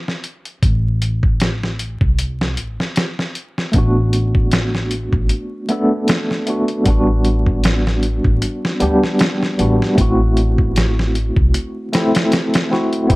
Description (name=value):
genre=trip hop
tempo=77 BPM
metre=4/4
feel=swing 55% on 16ths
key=A dorian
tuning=A4 = 438 Hz
part: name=dusty soul sampler-style drum kit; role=drums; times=0.1-13.2 s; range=hi-hat, kick drum, snare drum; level=-18 LUFS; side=equal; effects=small room ambience
part: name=upright bass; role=bass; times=0.6-13.2 s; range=A1 to D2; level=-18 LUFS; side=equal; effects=none
part: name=tine electric piano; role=accompaniment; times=3.7-13.2 s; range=G3 to A4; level=-18 LUFS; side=equal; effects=medium tremolo, tape echo
room=light reverb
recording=vinyl crackle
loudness=-15 LUFS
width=side -21 dB against mid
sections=0.0-13.2 A section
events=none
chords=0.0 Am; 3.7 Bm7/A; 6.9 A13sus4; 10.0 Am6